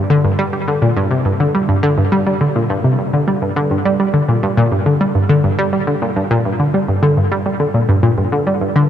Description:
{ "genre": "ambient", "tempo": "104 BPM", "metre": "4/4", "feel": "straight", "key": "G minor", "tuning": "A4 = 440 Hz", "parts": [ { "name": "analog pluck", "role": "solo", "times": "0.0-8.9 s", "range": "G2 to G3", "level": "-13 LUFS", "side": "equal", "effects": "chorus, cassette tape, tape echo" } ], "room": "wet huge ambient reverb, RT60 7.9 s", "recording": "cassette tape", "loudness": "-13 LUFS", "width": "side -10 dB against mid", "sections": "0.0-8.9 A section", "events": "none", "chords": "none", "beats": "0.39 | 0.97 1.54 2.12 2.70 | 3.27 3.85 4.43 5.01 | 5.58 6.16 6.74 7.31 | 7.89 8.47" }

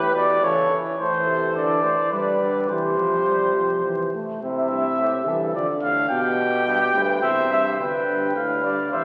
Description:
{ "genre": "classical, imitative canzona for brass ensemble", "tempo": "106 BPM", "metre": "3/4", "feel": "straight", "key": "C major", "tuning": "A4 = 440 Hz", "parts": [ { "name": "warm trumpet", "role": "melody", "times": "0.0-9.0 s", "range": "B4 to G5", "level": "-24 LUFS", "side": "equal", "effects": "none" }, { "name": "mellow flugelhorn", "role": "second line", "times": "0.0-9.0 s", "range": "E4 to D5", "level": "-29 LUFS", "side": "equal", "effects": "none" }, { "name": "mellow trombone", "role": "accompaniment", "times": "0.0-9.0 s", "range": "G2 to A3", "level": "-30 LUFS", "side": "equal", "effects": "none" }, { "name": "clear bass trombone", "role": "bass", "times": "0.0-9.0 s", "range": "D2 to E3", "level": "-30 LUFS", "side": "equal", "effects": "none" } ], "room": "wet concert hall reverb, RT60 2.3 s", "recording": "very old 78 rpm record, vinyl crackle", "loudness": "-22 LUFS", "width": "mono", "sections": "0.0-4.4 A section; 4.4-7.8 B section; 7.8-9.0 A section", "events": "none", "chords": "0.4 A/C#; 1.0 Am; 1.6 D5; 2.1 G; 2.7 C; 5.5 Dm/F; 6.1 G/B; 7.2 C/E; 7.8 G", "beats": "0.43 | 0.99 1.55 2.12 | 2.69 3.27 3.85 | 4.42 4.99 5.55 | 6.10 6.66 7.22 | 7.79 8.36 8.93" }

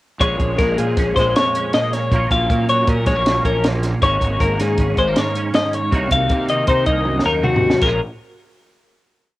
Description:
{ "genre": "math rock and midwest emo", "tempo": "158 BPM", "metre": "5/4", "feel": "straight", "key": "Bb minor", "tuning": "A4 = 438 Hz", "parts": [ { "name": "twelve-string electric guitar", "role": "accompaniment", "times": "0.2-8.0 s", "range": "F2 to Ab4", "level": "-22 LUFS", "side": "right 3 dB", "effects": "ensemble chorus" }, { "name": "twelve-string electric guitar", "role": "arpeggios", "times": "0.2-8.0 s", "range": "Gb4 to F5", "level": "-18 LUFS", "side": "left 3 dB", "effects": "none" }, { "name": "fuzz fingered electric bass", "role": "bass", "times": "0.2-8.0 s", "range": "Ab1 to C3", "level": "-23 LUFS", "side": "equal", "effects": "overdrive" }, { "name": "compact cocktail drum kit", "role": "drums", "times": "0.2-7.9 s", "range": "crash cymbal, hi-hat, kick drum, snare drum, toms", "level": "-21 LUFS", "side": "equal", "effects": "cassette tape" } ], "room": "light reverb", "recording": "home recording on cassette", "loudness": "-15 LUFS", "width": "side -17 dB against mid", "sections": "0.2-7.8 A section; 7.8-9.4 final chord", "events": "drum fill 7.1-7.8", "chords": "0.2 Bbm7; 2.1 Gbmaj7/Bb; 4.0 Ab9sus4; 5.9 Cm7b5; 7.8 Bb7(no3)", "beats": "| 0.21 0.59 0.97 1.35 1.74 | 2.12 2.50 2.88 3.27 3.65 | 4.03 4.41 4.79 5.17 5.55 | 5.93 6.30 6.68 7.06 7.44 | 7.82" }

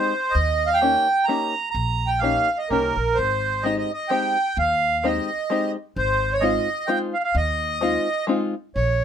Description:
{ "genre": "musette waltz", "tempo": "128 BPM", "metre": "3/4", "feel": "swing 54% on 8ths", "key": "Ab major", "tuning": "A4 = 440 Hz", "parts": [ { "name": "accordion", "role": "melody", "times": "0.0-9.0 s", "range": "Bb4 to Bb5", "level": "-21 LUFS", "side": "right 2 dB", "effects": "none" }, { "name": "open-back banjo", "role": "accompaniment", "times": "0.0-8.5 s", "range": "Ab3 to G4", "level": "-23 LUFS", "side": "left 4 dB", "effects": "none" }, { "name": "upright bass", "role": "bass", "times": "0.3-9.0 s", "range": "Ab1 to Eb2", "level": "-26 LUFS", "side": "equal", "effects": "none" } ], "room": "light reverb", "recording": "minimal, uncompressed stereo recording", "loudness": "-20 LUFS", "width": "side -8 dB against mid", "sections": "0.0-9.0 A section", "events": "none", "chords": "0.3 Eb7; 3.2 Abmaj7; 6.0 Ab6", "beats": "| 0.34 0.81 1.27 | 1.74 2.21 2.69 | 3.16 3.64 4.11 | 4.57 5.04 5.50 | 5.96 6.43 6.89 | 7.35 7.82 8.29 | 8.76" }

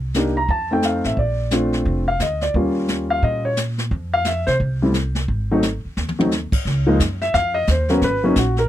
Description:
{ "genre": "jazz piano trio", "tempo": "175 BPM", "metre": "4/4", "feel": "swing 62% on 8ths", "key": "unclear", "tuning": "A4 = 440 Hz", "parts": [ { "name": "upright bass", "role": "bass", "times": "0.0-8.7 s", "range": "F1 to C3", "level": "-22 LUFS", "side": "equal", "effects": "none" }, { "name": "jazz brush drum kit", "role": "drums", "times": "0.1-8.7 s", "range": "brushed snare drum, crash cymbal, hi-hat, kick drum, snare drum, toms", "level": "-25 LUFS", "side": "equal", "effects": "none" }, { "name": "dark baby grand piano", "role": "melody", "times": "0.2-8.7 s", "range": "F3 to Bb5", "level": "-19 LUFS", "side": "left 1 dB", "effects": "none" } ], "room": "little or no reverb", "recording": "dry, close 1970s-style studio recording", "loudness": "-17 LUFS", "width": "side -12 dB against mid", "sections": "0.0-6.7 A section; 6.7-8.7 B section", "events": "drum fill 6.0-6.3", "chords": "0.5 F7; 1.2 Bbmaj7; 2.5 Eb9; 3.9 Fmaj7(no3); 5.3 Ab5; 6.7 Db69; 8.0 Abm9", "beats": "0.14 0.49 0.83 | 1.17 1.52 1.86 2.20 | 2.55 2.89 3.23 3.58 | 3.92 4.26 4.60 4.95 | 5.29 5.63 5.97 6.31 | 6.66 7.00 7.34 7.68 | 8.02 8.36" }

